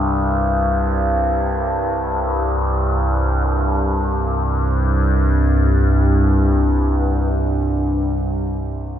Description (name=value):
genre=ambient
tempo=free time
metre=none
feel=none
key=unclear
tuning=A4 = 440 Hz
part: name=overtone-sweeping drone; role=drone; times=0.0-8.1 s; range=C2 to G2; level=-16 LUFS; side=equal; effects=chorus, built-in reverb
room=wet cathedral reverb, RT60 5.3 s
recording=dark, warm production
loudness=-16 LUFS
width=side -10 dB against mid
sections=0.0-3.5 A section; 3.5-7.3 B section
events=none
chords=0.0 C5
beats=free time